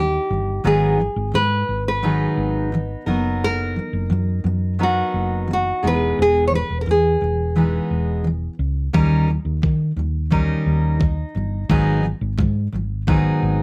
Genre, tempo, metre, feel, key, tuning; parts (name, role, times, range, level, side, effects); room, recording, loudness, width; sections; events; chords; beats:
acoustic pop; 87 BPM; 4/4; straight; A4 = 436 Hz
nylon-string guitar; melody; 0.0-7.9 s; F#4 to C#5; -23 LUFS; equal
fingerpicked steel-string acoustic guitar; accompaniment; 0.0-13.6 s; G#2 to A#4; -24 LUFS; equal
hollow-body short-scale fingered electric bass; bass; 0.0-13.6 s; E1 to D#3; -24 LUFS; equal
electronic kick drum; drums; 8.9-13.2 s; -24 LUFS; equal
light reverb; -20 LUFS; mono
0.0-13.6 A section
0.0 D#; 0.7 G#m7; 3.1 Bmaj7/F#; 5.8 Emaj7; 8.9 D#7; 11.7 G#m7
| 0.65 1.34 2.04 2.73 | 3.42 4.11 4.80 5.50 | 6.19 6.88 7.57 8.26 | 8.95 9.63 10.32 11.01 | 11.70 12.39 13.08